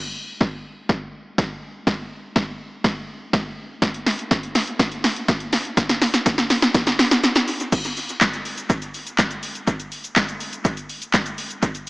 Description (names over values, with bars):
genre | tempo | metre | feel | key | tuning
pop | 123 BPM | 4/4 | straight | none | none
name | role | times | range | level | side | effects
house drum kit | drums | 0.4-11.9 s | crash cymbal, handclaps, hi-hat, kick drum, shaker, snare drum | -20 LUFS | equal | dub echo
room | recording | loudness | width
moderate plate reverb, RT60 2.6 s | echo-heavy mix, small speaker sound | -19 LUFS | side -25 dB against mid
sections
0.0-7.7 A section; 7.7-11.9 B section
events
build-up 0.0-7.7; drum fill 0.0-7.7; drop 7.7-11.9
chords
none